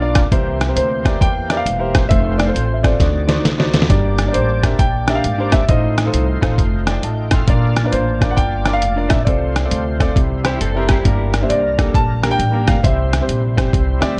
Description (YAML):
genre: uptempo gospel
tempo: 134 BPM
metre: 4/4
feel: swing 64% on 8ths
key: F major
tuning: A4 = 440 Hz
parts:
  - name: warm baby grand piano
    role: melody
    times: 0.0-13.5 s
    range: B4 to A5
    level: -24 LUFS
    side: equal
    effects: none
  - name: clear grand piano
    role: accompaniment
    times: 0.0-14.2 s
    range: G2 to C6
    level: -25 LUFS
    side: equal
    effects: none
  - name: overdriven tonewheel organ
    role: sustained chords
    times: 0.0-14.2 s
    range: E3 to A5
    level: -29 LUFS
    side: equal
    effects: slow rotary speaker, chorus vibrato
  - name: upright bass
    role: bass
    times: 0.0-14.2 s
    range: E1 to E2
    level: -22 LUFS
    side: equal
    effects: none
  - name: trip hop sampler-style drum kit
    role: drums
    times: 0.2-14.1 s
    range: hi-hat, kick drum, rim click, snare drum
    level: -19 LUFS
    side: equal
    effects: none
  - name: clean electric guitar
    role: second line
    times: 10.5-11.3 s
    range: E4 to A4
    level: -30 LUFS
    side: equal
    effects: tremolo
room: light reverb, studio ambience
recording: dark, warm production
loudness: -16 LUFS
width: mono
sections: 0.0-14.2 A section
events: drum fill 3.0-3.9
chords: 0.3 C7; 2.1 F; 3.0 D7b9; 3.9 Gm; 5.7 F7/A; 6.6 F7; 7.5 Bb; 9.3 F/C; 10.2 C; 11.1 Gm; 12.8 C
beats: | 0.32 0.76 1.21 1.66 | 2.11 2.56 3.00 3.45 | 3.90 4.35 4.79 5.24 | 5.69 6.14 6.58 7.03 | 7.48 7.93 8.37 8.82 | 9.27 9.71 10.16 10.61 | 11.06 11.50 11.95 12.40 | 12.84 13.29 13.74 14.19